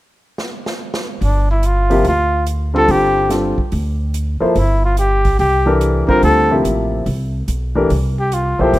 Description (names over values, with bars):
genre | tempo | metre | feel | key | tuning
modal jazz | 144 BPM | 4/4 | swing 66% on 8ths | G dorian | A4 = 440 Hz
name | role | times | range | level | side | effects
swinging big-band drum kit | drums | 0.4-8.8 s | hi-hat, kick drum, snare drum | -25 LUFS | right 1 dB | none
mellow trumpet | melody | 1.2-8.8 s | D4 to Bb4 | -17 LUFS | equal | none
upright bass | bass | 1.2-8.8 s | G1 to D2 | -17 LUFS | equal | none
warm concert grand piano | accompaniment | 1.9-8.8 s | C3 to C5 | -16 LUFS | left 1 dB | none
room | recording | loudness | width
light reverb, small room ambience | rough home demo mix | -13 LUFS | side -16 dB against mid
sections
0.0-1.2 A section; 1.2-8.8 B section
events
drum fill 0.4-1.2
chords
0.0 N.C.; 1.2 G9sus4; 7.9 C7sus4